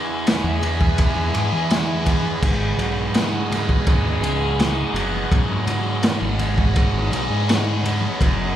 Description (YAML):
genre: psychedelic rock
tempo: 83 BPM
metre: 4/4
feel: straight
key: G# minor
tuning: A4 = 439 Hz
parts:
  - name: warm studio string section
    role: sustained chords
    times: 0.0-8.6 s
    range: F#4 to G#5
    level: -28 LUFS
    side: right 3 dB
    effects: none
  - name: thick fuzz guitar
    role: riff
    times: 0.0-8.6 s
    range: E2 to G#4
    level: -24 LUFS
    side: equal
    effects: distortion, phaser
  - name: crunchy breakbeat drum kit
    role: drums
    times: 0.3-8.4 s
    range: crash cymbal, kick drum, ride cymbal, snare drum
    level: -21 LUFS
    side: equal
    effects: none
  - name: growling fingered electric bass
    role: bass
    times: 0.4-8.5 s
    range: F#1 to E3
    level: -24 LUFS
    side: equal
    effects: overdrive
  - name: congas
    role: percussion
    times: 0.4-8.2 s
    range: none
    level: -33 LUFS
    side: left 4 dB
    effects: none
room: moderate large studio reverb, RT60 0.9 s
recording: band playing live in one room, faint mains hum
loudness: -18 LUFS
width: side -11 dB against mid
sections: 0.0-8.6 A section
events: none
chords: 0.0 E; 2.4 G#m7